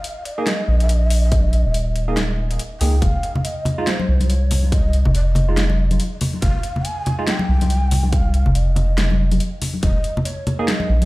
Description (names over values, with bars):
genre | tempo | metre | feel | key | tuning
deep dubstep | 141 BPM | 4/4 | swing 58% on 16ths, half-time | F minor | A4 = 440 Hz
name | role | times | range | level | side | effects
breathy mellow long shakuhachi | melody | 0.0-11.1 s | C5 to Ab5 | -29 LUFS | equal | vintage 12-bit sampler grit, dub echo
dubstep drum kit | drums | 0.0-11.1 s | hi-hat, snare drum | -26 LUFS | equal | studio ambience
barky tine electric piano | stabs | 0.4-7.3, 10.6-10.7 s | Ab3 to Ab4 | -27 LUFS | right 3 dB | overdrive, analog chorus, dub echo
soft dub sub bass | bass | 0.7-11.1 s | Eb1 to Db2 | -17 LUFS | equal | none
electronic kick drum | drums | 1.3-9.9 s | none | -19 LUFS | equal | studio ambience
congas | percussion | 3.4-11.1 s | none | -23 LUFS | left 1 dB | none
room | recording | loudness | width
digital ambience | played on a big sound system in a bare room, large studio reverb | -16 LUFS | side -20 dB against mid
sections
0.0-11.1 A section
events
none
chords
0.0 Eb5; 3.0 F7(no3); 9.8 Ebsus4